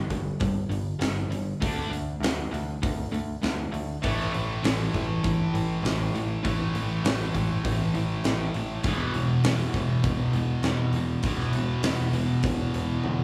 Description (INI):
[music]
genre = hard rock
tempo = 100 BPM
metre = 4/4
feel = straight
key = unclear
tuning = A4 = 440 Hz
[part]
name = sludgy distorted guitar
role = riff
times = 0.0-13.2 s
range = E2 to D4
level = -32 LUFS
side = equal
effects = overdrive
[part]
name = picked electric bass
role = bass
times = 0.0-13.2 s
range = E1 to D2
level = -34 LUFS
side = equal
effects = none
[part]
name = huge arena drum kit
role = drums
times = 0.1-13.2 s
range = hi-hat, kick drum, snare drum, toms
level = -32 LUFS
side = equal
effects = none
[part]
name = high-gain distorted guitar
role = riff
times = 4.0-13.2 s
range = E2 to A3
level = -33 LUFS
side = equal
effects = distortion
[sound]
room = moderate large studio reverb, RT60 1.0 s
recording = band playing live in one room, small room reverb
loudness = -27 LUFS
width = mono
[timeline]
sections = 0.0-13.2 A section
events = drum fill 13.0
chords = 0.0 G5; 1.6 D5; 4.0 A5; 8.8 E5